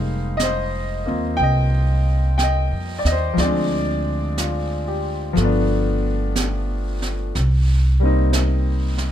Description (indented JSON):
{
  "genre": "jazz ballad",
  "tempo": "61 BPM",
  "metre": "4/4",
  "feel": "swing 68% on 8ths",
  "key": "unclear",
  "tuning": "A4 = 440 Hz",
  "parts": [
    { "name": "clear concert grand piano", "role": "accompaniment", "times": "0.0-9.1 s", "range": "F3 to G5", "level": "-22 LUFS", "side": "left 2 dB", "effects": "none" },
    { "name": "upright bass", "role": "bass", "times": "0.0-9.1 s", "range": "F1 to F2", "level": "-20 LUFS", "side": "equal", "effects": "none" },
    { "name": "jazz brush drum kit", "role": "drums", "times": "0.4-9.1 s", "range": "brushed snare drum, hi-hat, snare drum", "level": "-29 LUFS", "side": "right 3 dB", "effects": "none" }
  ],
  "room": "little or no reverb",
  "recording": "faint mains hum",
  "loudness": "-18 LUFS",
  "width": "side -10 dB against mid",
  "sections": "0.0-9.1 A section",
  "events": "none",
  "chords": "0.0 Fm11; 3.4 Dm7b5; 5.4 G7; 7.3 Cm7"
}